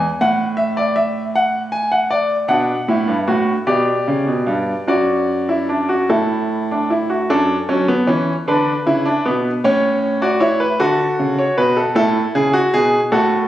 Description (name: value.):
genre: classical, baroque-style 3-part fugue for grand piano.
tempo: 51 BPM (dotted quarters).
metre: 6/8.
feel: straight.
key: D major.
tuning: A4 = 440 Hz.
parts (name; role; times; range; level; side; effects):
clear grand piano; solo; 0.0-13.5 s; F#2 to G#5; -15 LUFS; equal; none.
room: moderate recital hall reverb, RT60 1.5 s.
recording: recorded on a phone in the room, club reverb.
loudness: -15 LUFS.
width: side -13 dB against mid.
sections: 0.0-7.3 A section; 7.3-13.5 B section.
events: none.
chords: 0.2 A5; 1.4 D/A; 2.5 Bm; 3.7 G; 4.9 D/F#; 6.1 A5; 7.3 D/F#; 8.5 E5; 9.6 A; 10.8 D; 12.0 A.